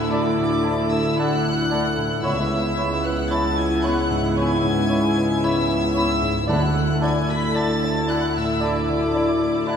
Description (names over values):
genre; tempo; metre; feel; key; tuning
cinematic, emotional film score for orchestra; 56 BPM; 4/4; rubato; D lydian; A4 = 444 Hz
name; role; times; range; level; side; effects
dark chamber violin section; melody; 0.0-9.8 s; D6 to B6; -29 LUFS; left 2 dB; none
rich studio violin section; second line; 0.0-9.8 s; D5 to B5; -31 LUFS; left 2 dB; none
dark concert grand piano; accompaniment; 0.0-9.8 s; C#2 to E5; -27 LUFS; left 2 dB; none
warm studio viola section; accompaniment; 0.0-9.8 s; A3 to E4; -29 LUFS; right 2 dB; none
warm French horn section; sustained chords; 0.0-9.8 s; A3 to E4; -26 LUFS; left 3 dB; none
rich studio double bass section; bass; 0.0-9.8 s; C#2 to D2; -28 LUFS; right 3 dB; none
warm studio cello section; bass; 0.0-9.8 s; C#2 to D2; -28 LUFS; right 1 dB; none
clear clarinet; second line; 0.1-9.8 s; E4; -32 LUFS; left 2 dB; none
concert flute; second line; 0.1-9.8 s; A5 to B5; -33 LUFS; equal; none
mellow cor anglais; second line; 0.1-9.8 s; C#5 to D5; -31 LUFS; right 2 dB; none
timpani; percussion; 6.5-8.1 s; D3; -26 LUFS; equal; none
room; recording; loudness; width
wet church reverb, RT60 2.7 s; none; -18 LUFS; side -7 dB against mid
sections
0.0-9.8 A section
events
none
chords
0.0 Dadd9; 2.2 C#m7; 6.5 Dadd9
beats
0.11 1.17 | 2.24 3.31 4.37 5.43 | 6.49 7.56 8.63 9.68